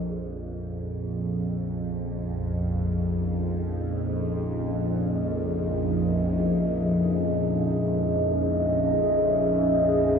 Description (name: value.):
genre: dark ambient drone.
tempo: free time.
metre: none.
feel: none.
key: unclear.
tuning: A4 = 440 Hz.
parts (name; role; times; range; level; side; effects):
bowed-like drone; drone; 0.0-10.2 s; Bb1 to F2; -26 LUFS; equal; built-in reverb, phaser.
bronze singing bowl; texture; 0.0-10.2 s; Ab4 to Eb5; -48 LUFS; right 4 dB; none.
dark analog pad; sustained chords; 2.6-10.2 s; Db4 to Fb5; -26 LUFS; equal; chorus, phaser.
room: wet plate reverb, RT60 3.4 s.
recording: dreamy mix soaked in reverb.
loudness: -23 LUFS.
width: side -6 dB against mid.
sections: 0.1-10.2 A section.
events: none.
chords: 0.1 Dbm.